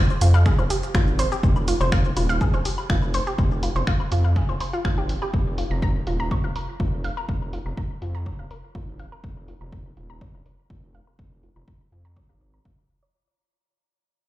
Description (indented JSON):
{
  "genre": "melodic techno",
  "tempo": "123 BPM",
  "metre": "4/4",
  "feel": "straight",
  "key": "unclear",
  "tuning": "A4 = 440 Hz",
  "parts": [
    { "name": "punchy analog drum machine", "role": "drums", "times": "0.1-13.0 s", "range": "finger snaps, hi-hat, shaker, woodblock", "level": "-32 LUFS", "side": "equal", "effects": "low-pass filter on snare, small room ambience, sidechain pumping on perc, low-pass filter on perc, sidechain pumping on hats, low-pass filter on hats" },
    { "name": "analog pluck", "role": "arpeggios", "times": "0.2-13.1 s", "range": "F4 to Bb5", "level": "-29 LUFS", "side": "equal", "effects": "chorus, sidechain pumping, ping-pong delay" },
    { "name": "gritty driven synth bass", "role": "bass", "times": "0.2-12.7 s", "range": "Eb1 to F2", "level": "-23 LUFS", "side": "equal", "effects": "sidechain pumping" },
    { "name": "electronic kick drum", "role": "drums", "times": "0.5-12.8 s", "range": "none", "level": "-24 LUFS", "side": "equal", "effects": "overdrive, small room ambience" }
  ],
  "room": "little or no reverb",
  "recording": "played on a big sound system in a bare room, large studio reverb",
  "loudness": "-20 LUFS",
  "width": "side -15 dB against mid",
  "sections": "0.0-13.1 A section",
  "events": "fade-out 0.0-13.1",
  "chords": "0.0 Fmadd9; 5.3 Bb5",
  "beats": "0.46 0.94 | 1.43 1.92 2.41 2.90 | 3.38 3.87 4.36 4.85 | 5.34 5.82 6.31 6.80 | 7.29 7.78 8.26 8.75 | 9.24 9.73 10.21 10.70 | 11.19 11.68 12.16 12.65"
}